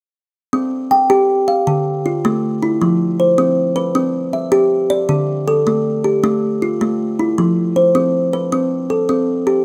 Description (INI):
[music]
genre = southern african traditional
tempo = 105 BPM (dotted quarters)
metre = 12/8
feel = straight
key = unclear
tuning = A4 = 440 Hz
[part]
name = kalimba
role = solo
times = 0.5-9.6 s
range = D3 to G5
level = -16 LUFS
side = equal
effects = none
[sound]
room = light reverb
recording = rough home demo mix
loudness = -16 LUFS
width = mono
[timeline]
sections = 0.5-9.6 A section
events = none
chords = 0.5 C5; 1.7 Dm; 2.8 F5; 4.0 C; 5.1 Dm; 7.4 F